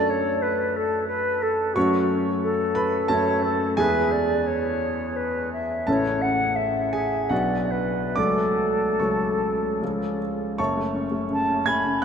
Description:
classical, romantic duo for flute and grand piano; 67-93 BPM; 3/4; rubato; F# minor; A4 = 439 Hz
silver concert flute; melody; 0.0-12.0 s; F#4 to B5; -24 LUFS; equal
clear grand piano; accompaniment; 0.0-12.0 s; F#1 to G#6; -24 LUFS; equal
wet cathedral reverb, RT60 5.2 s; in a vast, echoing space; -21 LUFS; side -7 dB against mid
0.0-10.6 A section; 10.6-12.0 B section
0.0 D/F#; 1.8 F#m; 3.8 E; 5.9 A; 7.3 Bm; 8.2 F#m/C#; 9.8 C#; 10.6 F#m

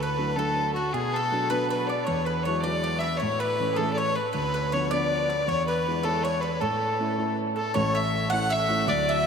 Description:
celtic folk, Celtic jig; 106 BPM (dotted quarters); 6/8; straight; A major; A4 = 439 Hz
rich fiddle; melody; 0.0-9.3 s; F#4 to F#5; -26 LUFS; left 2 dB
mandolin; second line; 0.0-9.3 s; F#4 to F#5; -30 LUFS; right 4 dB
warm concert grand piano; accompaniment; 0.0-9.3 s; D1 to E4; -28 LUFS; right 1 dB
wet huge ambient reverb, RT60 8.4 s; in a vast, echoing space; -23 LUFS; side -6 dB against mid
0.0-7.7 A section; 7.7-9.3 B section
0.0 D; 0.9 Bm; 2.1 Eadd9; 3.2 A; 4.3 Dm6; 5.5 E; 6.6 A

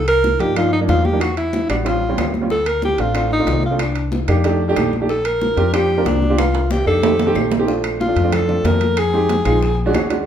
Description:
Afro-Cuban jazz; 185 BPM; 4/4; straight; Bb major; A4 = 440 Hz
breathy alto saxophone; melody; 0.0-10.1 s; D4 to Bb4; -19 LUFS; equal
upright bass; bass; 0.0-10.3 s; A1 to G2; -21 LUFS; left 1 dB
claves; percussion; 0.1-10.1 s; -32 LUFS; left 1 dB
congas; percussion; 0.1-10.3 s; -27 LUFS; right 1 dB
timbales; percussion; 0.1-10.3 s; -26 LUFS; right 7 dB
bongos; percussion; 0.2-10.3 s; -29 LUFS; left 6 dB
warm upright piano; accompaniment; 0.4-10.2 s; F3 to Bb4; -20 LUFS; right 2 dB
light reverb; minimal, uncompressed stereo recording; -15 LUFS; side -9 dB against mid
0.0-7.7 A section; 7.7-10.3 B section
drum fill 6.4-7.7
0.0 Cm11; 1.2 Em9; 1.9 A7alt; 2.5 Dm7; 3.8 Cm9; 4.4 F13; 5.1 Bb6; 6.4 Cm7; 7.0 F7; 7.7 Bbmaj9; 9.0 Fm7; 9.6 Bb7alt

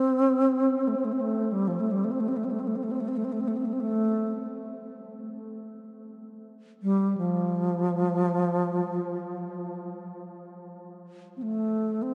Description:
world meditative; free time; F major pentatonic; A4 = 440 Hz
bright bass flute; solo; 0.0-12.1 s; F3 to C4; -28 LUFS; equal; analog delay
wet huge ambient reverb, RT60 7.8 s; dreamy mix soaked in reverb, nothing above 10.5 kHz; -27 LUFS; mono
0.0-10.2 A section; 10.2-12.1 A section

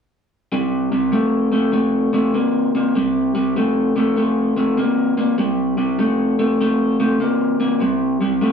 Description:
blues; 99 BPM; 4/4; swing 66% on 8ths; A4 = 442 Hz
electric guitar through a small old amp; solo; 0.5-8.5 s; C3 to Bb3; -16 LUFS; equal
wet large studio reverb, RT60 0.8 s; band playing live in one room; -16 LUFS; side -7 dB against mid
0.5-8.5 A section
0.5 C5

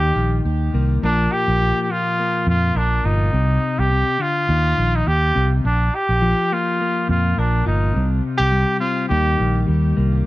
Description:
highlife guitar band; 104 BPM; 4/4; swing 55% on 16ths; Bb major; A4 = 439 Hz
clear trumpet; melody; 0.0-9.6 s; D4 to G4; -21 LUFS; equal; plate reverb, tape echo
clean electric guitar; accompaniment; 0.0-10.3 s; Bb2 to Bb4; -24 LUFS; left 4 dB
fingered electric bass; bass; 0.0-10.2 s; G1 to F2; -18 LUFS; right 1 dB
moderate studio reverb, RT60 0.6 s; nothing above 11.0 kHz; -16 LUFS; side -17 dB against mid
0.0-10.3 A section
0.0 Eb; 1.0 Bb5; 3.3 Cmadd9; 4.5 Eb5; 5.6 Bb5; 8.0 C5; 9.1 Eb

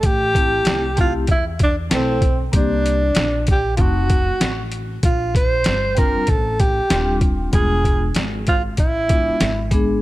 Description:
hip hop, jazz-hop; 96 BPM; 4/4; swing 64% on 16ths; A4 = 441 Hz
breathy alto saxophone; melody; 0.0-9.7 s; C4 to C5; -21 LUFS; right 1 dB
upright bass; bass; 0.0-10.0 s; D#1 to E2; -23 LUFS; equal
boom bap sampler-style drum kit; drums; 0.0-9.9 s; hi-hat, kick drum, snare drum; -19 LUFS; equal
vibraphone with medium mallets; accompaniment; 0.3-10.0 s; G3 to A4; -25 LUFS; left 3 dB
light reverb; dark, warm production; -16 LUFS; side -17 dB against mid
0.0-10.0 A section
0.0 Am7; 2.5 Csus2; 3.8 F7b9; 5.0 Bb69; 7.5 E7b9

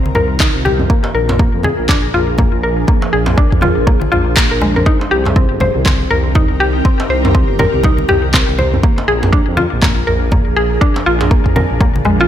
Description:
afro house; 121 BPM; 4/4; swing 60% on 16ths; A4 = 439 Hz
ethereal airy pad; sustained chords; 0.0-12.3 s; Eb3 to C5; -20 LUFS; equal; ensemble chorus, built-in reverb, phaser, sidechain pumping
mallet-like synth pluck; arpeggios; 0.0-12.3 s; Ab3 to C5; -17 LUFS; left 1 dB; chorus, sidechain pumping, ping-pong delay
dark detuned saw bass; bass; 0.0-12.3 s; G1 to F2; -18 LUFS; equal; sidechain pumping
congas; percussion; 0.1-12.2 s; -21 LUFS; left 1 dB
afro-pop drum kit; drums; 0.2-12.2 s; handclaps, toms; -19 LUFS; equal
electronic kick drum; drums; 0.4-11.9 s; -13 LUFS; equal
djembe; percussion; 0.8-12.3 s; -23 LUFS; right 2 dB
light reverb, digital ambience; -11 LUFS; side -10 dB against mid
0.0-12.3 A section
filter sweep on synth arpeggio sound 0.0-12.3
0.0 Cm7; 0.9 Bb7; 4.9 Cm7; 8.8 Bb7

